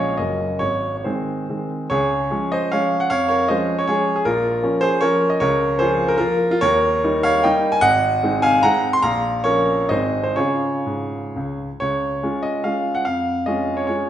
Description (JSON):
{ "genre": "classical, romantic triple-time dance for piano with dotted rhythms", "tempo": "114-168 BPM", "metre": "3/4", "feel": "rubato", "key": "Db major", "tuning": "A4 = 440 Hz", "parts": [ { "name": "warm baby grand piano", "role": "solo", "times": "0.0-14.1 s", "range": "Gb1 to C6", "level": "-17 LUFS", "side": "equal", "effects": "none" } ], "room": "wet recital hall reverb, RT60 1.3 s", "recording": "recorded in a church or concert hall, nothing above 10.6 kHz", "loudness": "-17 LUFS", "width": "side -10 dB against mid", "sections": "0.0-1.9 A section; 1.9-11.8 B section; 11.8-14.1 C section", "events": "none", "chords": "0.2 Ebm7/Gb; 0.6 Ab; 1.9 Db; 3.1 Db/F; 4.2 Bbm; 5.4 Bbm/Db; 6.6 Eb7; 7.8 Ab; 9.0 Bbm; 9.9 Ab; 10.4 Db; 13.1 Db/F", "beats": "0.18 | 0.60 1.05 1.49 | 1.89 2.31 2.72 | 3.09 3.48 3.88 | 4.25 4.62 5.01 | 5.40 5.79 6.19 | 6.62 7.04 7.45 | 7.83 8.23 8.64 | 9.04 9.45 9.90 | 10.36 10.86 11.36 | 11.81 12.22 12.65 | 13.05 13.47 13.88" }